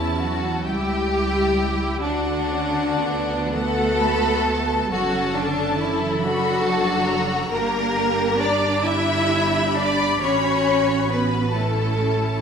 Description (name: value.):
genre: classical, slow romantic movement for string orchestra.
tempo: 38-47 BPM (dotted quarters).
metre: 6/8.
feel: rubato.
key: D major.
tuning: A4 = 440 Hz.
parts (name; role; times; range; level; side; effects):
warm studio violin section; melody; 0.0-12.4 s; F#5 to B5; -28 LUFS; left 4 dB; none.
warm studio violin section; second line; 0.0-12.4 s; D4 to E5; -22 LUFS; left 2 dB; none.
rich studio viola section; accompaniment; 0.0-12.4 s; B3 to A4; -27 LUFS; right 2 dB; none.
rich studio double bass section; bass; 0.0-12.4 s; F#1 to E2; -27 LUFS; right 3 dB; none.
warm studio cello section; bass; 0.0-12.4 s; D3 to E4; -27 LUFS; right 2 dB; none.
room: wet recital hall reverb, RT60 1.5 s.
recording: minimal, uncompressed stereo recording.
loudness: -19 LUFS.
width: side -6 dB against mid.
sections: 0.0-12.4 A section.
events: none.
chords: 0.0 A7/E; 2.0 D; 4.9 D/F#; 7.5 Em7b5/G; 10.2 A.